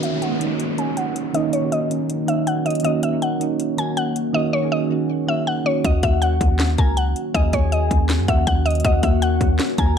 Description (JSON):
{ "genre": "hip hop, trap", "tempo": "160 BPM", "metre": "4/4", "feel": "half-time", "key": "Eb phrygian", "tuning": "A4 = 440 Hz", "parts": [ { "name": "mallet-like synth pluck", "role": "melody", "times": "0.0-10.0 s", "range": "Db5 to Ab5", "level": "-24 LUFS", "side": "left 1 dB", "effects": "chorus, low-pass filter" }, { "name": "soft electric-piano-like synth keys", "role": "accompaniment", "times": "0.0-5.9 s", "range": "Eb3 to Ab4", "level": "-23 LUFS", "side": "right 5 dB", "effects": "chorus, low-pass filter" }, { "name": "deep dark ambient pad", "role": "sustained chords", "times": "0.0-10.0 s", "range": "Eb3 to Gb4", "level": "-25 LUFS", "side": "equal", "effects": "chorus, built-in reverb, low-pass filter" }, { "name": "trap drum kit", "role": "drums", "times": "0.0-9.9 s", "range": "handclaps, hi-hat, kick drum, snare drum", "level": "-22 LUFS", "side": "left 1 dB", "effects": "none" }, { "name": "downlifter", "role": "sound effects", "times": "0.0-2.8 s", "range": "none", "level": "-30 LUFS", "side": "equal", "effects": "none" }, { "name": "warm velvety synth lead", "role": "second line", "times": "5.8-10.0 s", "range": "Gb5 to Bb5", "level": "-28 LUFS", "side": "left 3 dB", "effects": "chorus, tremolo, digital delay" }, { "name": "warm 808-style bass", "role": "bass", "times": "5.8-10.0 s", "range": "Db2 to Gb2", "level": "-20 LUFS", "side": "left 1 dB", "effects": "none" } ], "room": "light reverb, digital ambience", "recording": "dark, warm production", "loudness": "-18 LUFS", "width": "side -8 dB against mid", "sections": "0.0-5.8 A section; 5.8-10.0 B section", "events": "filter sweep 0.0-5.8", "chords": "0.0 Ebm7" }